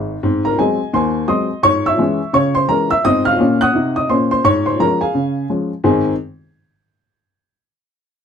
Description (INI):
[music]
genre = jazz, stride piano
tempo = 171 BPM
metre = 4/4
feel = swing 62% on 8ths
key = Ab major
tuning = A4 = 440 Hz
[part]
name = warm upright piano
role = solo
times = 0.0-6.1 s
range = Ab1 to Gb6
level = -14 LUFS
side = left 1 dB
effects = none
[sound]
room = light reverb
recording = dark, warm production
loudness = -14 LUFS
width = side -7 dB against mid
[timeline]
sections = 0.2-5.9 A section; 5.9-7.3 B section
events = none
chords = 0.2 Ab7; 1.6 Dbm/Ab; 3.0 Ab7; 4.4 Db/Ab; 5.9 Ab